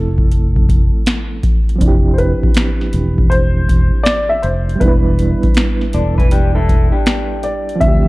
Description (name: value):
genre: lo-fi hip hop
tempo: 80 BPM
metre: 4/4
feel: swing 66% on 16ths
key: unclear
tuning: A4 = 440 Hz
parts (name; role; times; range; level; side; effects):
- warm upright piano; melody; 0.0-8.1 s; A4 to E5; -20 LUFS; left 1 dB; low-pass filter
- bright reed electric piano; accompaniment; 0.0-8.1 s; E3 to B4; -21 LUFS; right 3 dB; overdrive, fast tremolo, cassette tape, low-pass filter
- fingered electric bass; bass; 0.0-8.1 s; E1 to D2; -16 LUFS; equal; none
- booming analog drum machine; drums; 0.2-8.0 s; finger snaps, hi-hat, kick drum, snare drum; -14 LUFS; equal; none
- electric guitar through a small old amp; second line; 5.9-7.8 s; D4 to D5; -21 LUFS; left 2 dB; low-pass filter, tape echo
room: little or no reverb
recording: dark, warm production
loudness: -12 LUFS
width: side -20 dB against mid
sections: 0.0-8.1 A section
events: none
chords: 0.0 Fmaj7; 1.8 Dm11; 4.8 Em7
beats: 0.31 1.06 | 1.81 2.56 3.31 4.06 | 4.81 5.56 6.31 7.06 | 7.81